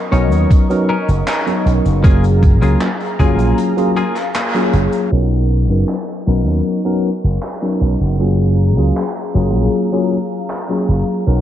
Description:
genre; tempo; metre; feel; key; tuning
vaporwave; 78 BPM; 4/4; straight; F# major; A4 = 440 Hz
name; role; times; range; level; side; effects
lush unison pad; sustained chords; 0.0-11.4 s; G#4 to C#6; -27 LUFS; left 1 dB; chorus, phaser
tine electric piano; accompaniment; 0.1-11.4 s; F#3 to A#4; -17 LUFS; left 1 dB; medium stereo tremolo, wide subtle chorus, analog delay
clean electric guitar; riff; 0.1-4.7 s; A#3 to C#5; -24 LUFS; left 2 dB; wide subtle chorus, analog delay
slap bass with an envelope filter; bass; 0.1-11.4 s; F#1 to D#2; -14 LUFS; equal; tube saturation
big rock drum kit; drums; 0.1-10.7 s; cabasa, handclaps, hi-hat; -26 LUFS; right 1 dB; vintage 12-bit sampler grit
electronic kick drum; drums; 0.5-3.4 s; none; -11 LUFS; equal; vintage 12-bit sampler grit
room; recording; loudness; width
light reverb, small room ambience; dark, warm production, cassette tape, low-pass filter; -13 LUFS; side -11 dB against mid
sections
0.0-5.1 A section; 5.1-11.4 B section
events
break 3.6-5.1; band accent 4.4-4.7; filter sweep on analog synth pad 5.1-11.4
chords
0.0 Bmaj9; 2.0 F#maj9; 5.1 Bmaj9; 8.2 F#maj9

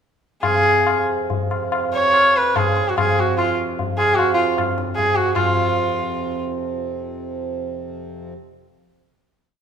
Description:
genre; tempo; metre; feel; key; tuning
indian classical, Hindustani; 139-173 BPM; 3/4; straight; F raga todi; A4 = 439 Hz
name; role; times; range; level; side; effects
rich sarangi; melody; 0.4-6.4 s; F4 to Db5; -18 LUFS; right 1 dB; none
pedal harmonium; drone; 0.4-8.3 s; F2 to C3; -27 LUFS; right 5 dB; none
tabla; percussion; 0.4-5.5 s; none; -22 LUFS; left 4 dB; none
room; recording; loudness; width
wet recital hall reverb, RT60 1.4 s; minimal, uncompressed stereo recording; -17 LUFS; side -7 dB against mid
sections
0.4-5.4 theme; 5.4-7.5 final chord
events
speeding up 0.4-7.5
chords
none

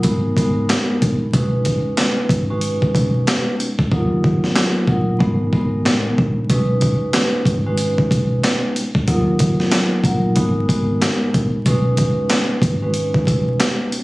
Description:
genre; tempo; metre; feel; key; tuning
hip hop, boom-bap hip-hop; 93 BPM; 4/4; swing 61% on 16ths; unclear; A4 = 440 Hz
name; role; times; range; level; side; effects
vibraphone with soft mallets; accompaniment; 0.0-13.8 s; Gb3 to B4; -19 LUFS; equal; high-pass filter, low-pass filter
upright bass; bass; 0.0-13.5 s; Ab1 to Eb2; -21 LUFS; equal; none
boom bap sampler-style drum kit; drums; 0.0-14.0 s; handclaps, hi-hat, kick drum, snare drum; -20 LUFS; equal; none
room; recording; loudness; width
light reverb; recorded on a phone in the room, club reverb, vinyl crackle; -15 LUFS; side -20 dB against mid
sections
0.0-14.0 A section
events
hi-hats muted 3.9-6.5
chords
0.0 Abm7; 1.3 B6; 3.9 Ebmadd9; 5.2 Abm7; 6.5 B6; 9.1 Ebmadd9; 10.4 Abm7; 11.7 B6

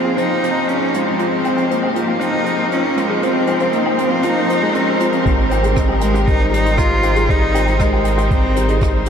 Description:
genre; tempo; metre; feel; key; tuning
piano and strings electronica; 118 BPM; 4/4; straight; Ab major; A4 = 440 Hz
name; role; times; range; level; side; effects
clear cello; melody; 0.0-8.8 s; Ab3 to F4; -18 LUFS; equal; none
rich chamber string section; sustained chords; 0.0-9.1 s; F3 to C5; -24 LUFS; left 1 dB; sidechain pumping
bright upright piano; riff; 0.0-9.1 s; F3 to G4; -21 LUFS; left 1 dB; ping-pong delay
soft round pluck; arpeggios; 0.1-9.1 s; F4 to C6; -26 LUFS; equal; chorus, sidechain pumping, ping-pong delay
jazz brush drum kit; drums; 0.2-9.1 s; hi-hat, rim click, woodblock; -30 LUFS; equal; none
warm sub bass; bass; 5.3-9.1 s; Ab1; -19 LUFS; equal; sidechain pumping
electronic kick drum; drums; 5.3-8.9 s; none; -18 LUFS; equal; none
room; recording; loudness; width
wet huge ambient reverb, RT60 7.8 s; dreamy mix soaked in reverb; -14 LUFS; side -7 dB against mid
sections
0.0-5.3 A section; 5.3-9.1 B section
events
build-up 0.0-5.3; drop 5.3-9.1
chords
0.0 Fm7; 5.3 Abmaj7

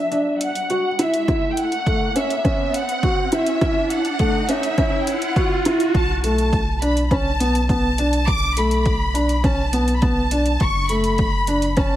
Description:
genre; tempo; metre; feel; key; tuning
piano and strings electronica; 103 BPM; 4/4; straight; B minor; A4 = 439 Hz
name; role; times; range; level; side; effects
warm symphonic violin section; melody; 0.0-12.0 s; E5 to D6; -24 LUFS; equal; low-pass filter, tape echo
riser; sound effects; 0.0-5.9 s; none; -27 LUFS; right 2 dB; none
felt-muted upright piano; riff; 0.1-11.9 s; A3 to F#4; -22 LUFS; equal; tape echo
electronic hi-hat; drums; 0.1-11.9 s; none; -32 LUFS; right 1 dB; overdrive, studio reverb
electronic kick drum; drums; 1.3-11.9 s; none; -21 LUFS; equal; overdrive, studio reverb
round analog bass; bass; 5.9-12.0 s; F#1 to B1; -22 LUFS; equal; tube saturation, sidechain pumping
room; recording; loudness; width
light reverb, studio reverb; none; -17 LUFS; side -13 dB against mid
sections
0.0-5.9 A section; 5.9-12.0 B section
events
build-up 0.0-5.9; riser 0.0-5.9; drop 5.9-12.0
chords
0.0 Bm (rootless); 1.3 F#m7; 5.9 Bm7; 10.6 F#m

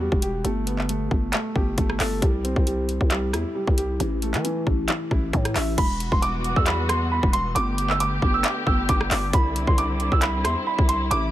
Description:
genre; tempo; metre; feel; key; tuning
hip hop, trap; 135 BPM; 4/4; half-time; unclear; A4 = 438 Hz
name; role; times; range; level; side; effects
felt-muted upright piano; accompaniment; 0.0-5.8 s; E3 to E5; -28 LUFS; equal; low-pass filter
growling 808-style bass; bass; 0.0-11.3 s; E1 to E3; -26 LUFS; equal; none
trap drum kit; drums; 0.1-11.2 s; crash cymbal, handclaps, hi-hat, kick drum, rim click; -23 LUFS; equal; none
dark grand piano; melody; 5.8-11.3 s; B5 to E6; -25 LUFS; right 3 dB; low-pass filter, digital delay
muted studio string section; sustained chords; 5.8-11.3 s; C3 to G4; -29 LUFS; left 2 dB; none
room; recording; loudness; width
little or no reverb; none; -20 LUFS; side -13 dB against mid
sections
0.0-5.8 A section; 5.8-11.3 B section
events
none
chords
0.4 Gadd9; 2.2 C; 4.0 A5; 5.8 Emadd9; 7.6 Gadd9; 9.3 Cadd9

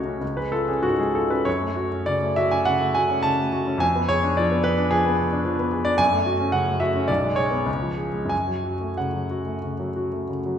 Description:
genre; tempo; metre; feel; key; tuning
classical, romantic character piece for solo piano; 88-114 BPM; 4/4; rubato; F# minor; A4 = 440 Hz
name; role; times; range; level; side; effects
clear grand piano; solo; 0.0-10.6 s; B1 to A5; -20 LUFS; equal; none
room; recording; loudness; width
wet recital hall reverb, RT60 1.7 s; recorded in a church or concert hall; -20 LUFS; side -8 dB against mid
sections
0.0-10.6 A section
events
none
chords
0.2 C#; 1.5 F#m; 3.8 Fdim7; 6.0 F#m; 7.1 G#dim/B; 7.7 C#; 8.3 F#m

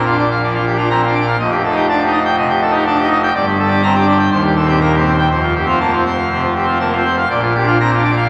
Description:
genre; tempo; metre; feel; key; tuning
classical, organ toccata; 122 BPM; 4/4; straight; Bb major; A4 = 440 Hz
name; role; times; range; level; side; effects
pipe organ, full organ; solo; 0.0-8.3 s; Eb1 to Bb5; -15 LUFS; equal; none
room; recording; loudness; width
wet church reverb, RT60 3.5 s; vinyl crackle; -15 LUFS; mono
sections
0.0-8.3 A section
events
none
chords
0.0 Bb; 1.4 F9; 3.3 Gm; 4.3 Cm7/Eb; 5.3 F; 7.3 Bb

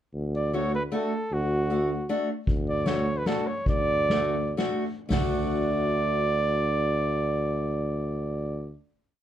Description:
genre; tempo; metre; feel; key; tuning
alpine folk, alpine dance band; 112-157 BPM; 3/4; swing 54% on 8ths, rubato; D major; A4 = 440 Hz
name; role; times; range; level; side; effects
clear tuba; bass; 0.1-8.7 s; D2; -29 LUFS; equal; none
warm flugelhorn; melody; 0.4-8.7 s; F#4 to D5; -28 LUFS; right 2 dB; none
picked old ladder-braced acoustic guitar; accompaniment; 0.5-8.8 s; A3 to F#4; -30 LUFS; left 2 dB; none
soft-mallet drum kit; drums; 2.5-5.2 s; hi-hat, kick drum, ride cymbal, snare drum, toms; -29 LUFS; equal; none
room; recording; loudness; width
light reverb; none; -24 LUFS; side -11 dB against mid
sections
0.1-5.1 A section; 5.1-8.3 final chord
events
slowing down 2.5-5.1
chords
0.1 D

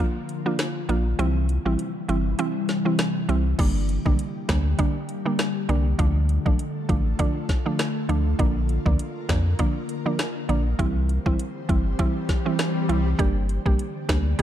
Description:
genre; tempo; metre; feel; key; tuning
dancehall; 100 BPM; 4/4; swing 56% on 16ths; G dorian; A4 = 439 Hz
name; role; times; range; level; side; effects
mallet-like synth pluck; accompaniment; 0.0-14.4 s; D3 to G4; -27 LUFS; right 3 dB; chorus
ethereal airy pad; sustained chords; 0.0-14.4 s; C3 to D5; -30 LUFS; left 2 dB; ensemble chorus, built-in reverb, sidechain pumping
afro-pop drum kit; drums; 0.3-14.4 s; crash cymbal, hi-hat, kick drum, rim click, snare drum; -24 LUFS; equal; overdrive
warm sub bass; bass; 0.9-14.3 s; G1 to F2; -23 LUFS; equal; none
swell; sound effects; 11.5-13.2 s; none; -34 LUFS; left 2 dB; none
room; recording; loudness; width
digital ambience; dark, warm production; -21 LUFS; side -11 dB against mid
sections
0.0-3.6 A section; 3.6-13.2 B section; 13.2-14.4 C section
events
kick muted 1.2-3.6; swell 11.5-13.2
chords
0.0 Bb; 1.2 C; 3.6 Gm; 6.0 Dm; 8.4 Bb; 10.8 C; 13.2 Gm

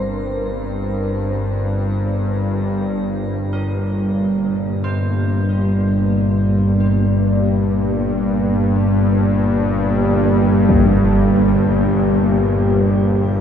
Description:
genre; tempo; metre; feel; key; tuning
dark ambient drone; free time; none; none; G minor; A4 = 440 Hz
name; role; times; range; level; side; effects
deep dark ambient pad; sustained chords; 0.0-13.4 s; Bb3 to D5; -21 LUFS; left 1 dB; chorus, built-in reverb, shimmer reverb
bowed-like drone; drone; 0.0-13.4 s; G1 to G2; -16 LUFS; equal; built-in reverb
old church bells; arpeggios; 3.5-13.4 s; D3 to C5; -32 LUFS; right 3 dB; ping-pong delay, shimmer reverb
impact; percussion; 10.7-10.9 s; none; -21 LUFS; left 1 dB; low-pass filter on sfx
room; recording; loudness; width
moderate huge ambient reverb, RT60 8.1 s; none; -15 LUFS; side -8 dB against mid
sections
0.0-2.9 A section; 2.9-13.4 B section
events
fade-in on church bells 2.9-13.4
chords
0.0 Bbsus2; 2.9 Gm

